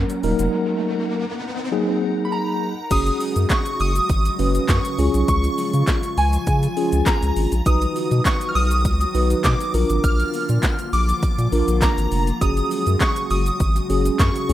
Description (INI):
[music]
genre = dance-pop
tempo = 101 BPM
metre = 4/4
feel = straight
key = F# major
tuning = A4 = 440 Hz
[part]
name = mellow tine electric piano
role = accompaniment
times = 0.0-14.5 s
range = F#3 to B4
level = -23 LUFS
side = equal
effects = medium stereo tremolo, sidechain pumping
[part]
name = glassy FM pad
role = sustained chords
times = 0.0-14.5 s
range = C#3 to A#5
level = -29 LUFS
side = left 2 dB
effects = ensemble chorus, built-in reverb, sidechain pumping
[part]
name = saturated sub bass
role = bass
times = 0.0-14.5 s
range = D#1 to C#3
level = -20 LUFS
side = equal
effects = sidechain pumping
[part]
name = riser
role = sound effects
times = 0.1-1.7 s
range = none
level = -30 LUFS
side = left 2 dB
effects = none
[part]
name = deep house drum kit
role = drums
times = 0.1-14.5 s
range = crash cymbal, handclaps, hi-hat, kick drum, shaker, snare drum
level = -22 LUFS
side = equal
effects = overdrive
[part]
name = shimmering bell with halo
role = melody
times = 2.2-14.5 s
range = G#5 to E#6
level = -24 LUFS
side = right 1 dB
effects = ensemble chorus, digital delay
[part]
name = group handclap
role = percussion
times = 3.5-14.3 s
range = none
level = -38 LUFS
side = equal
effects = none
[sound]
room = light reverb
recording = rough home demo mix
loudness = -18 LUFS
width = side -13 dB against mid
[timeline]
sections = 0.0-2.9 A section; 2.9-14.5 B section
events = riser 0.1-2.9; break 0.5-2.9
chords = 0.2 D#m; 2.9 F#sus2; 5.0 C#; 7.7 B; 9.7 A#; 12.4 F#sus2